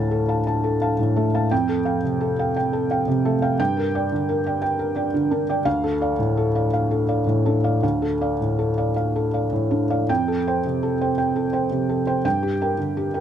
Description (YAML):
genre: neoclassical minimalist piano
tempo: 52-59 BPM (dotted quarters)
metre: 6/8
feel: rubato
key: F major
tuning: A4 = 439 Hz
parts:
  - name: felt-muted upright piano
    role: solo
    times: 0.0-13.2 s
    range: D2 to A5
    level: -19 LUFS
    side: equal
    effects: none
room: light reverb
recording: none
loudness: -19 LUFS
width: side -9 dB against mid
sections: 0.0-10.1 A section; 10.1-13.2 B section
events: none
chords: 0.0 Dm; 1.5 Fadd9; 3.6 Gm; 5.7 Dm; 10.1 Fadd9; 12.2 Gm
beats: 0.47 | 1.51 2.56 | 3.59 4.62 | 5.66 6.72 | 7.83 8.96 | 10.09 11.18 | 12.25